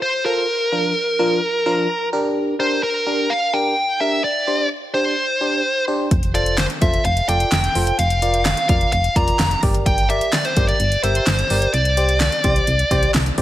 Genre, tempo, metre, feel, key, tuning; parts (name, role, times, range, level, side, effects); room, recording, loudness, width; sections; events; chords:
synth-pop; 128 BPM; 4/4; straight; A4 = 440 Hz
dark smooth lead guitar; melody; 0.0-13.1 s; Bb4 to Bb5; -19 LUFS; equal; overdrive
FM electric piano; accompaniment; 0.3-13.4 s; F3 to Bb5; -24 LUFS; equal; chorus
solid FM bass; bass; 6.1-13.4 s; F1 to C2; -21 LUFS; equal
deep house drum kit; drums; 6.1-13.4 s; handclaps, hi-hat, kick drum, snare drum; -20 LUFS; equal; overdrive, gated reverb
light reverb; -16 LUFS; side -14 dB against mid
0.0-13.4 A section
FM electric piano fill 1.4-2.4
0.5 Bb/F; 2.1 Gm; 4.2 Csus2; 6.1 F; 8.0 Bb/F; 9.6 Gm; 11.7 Csus2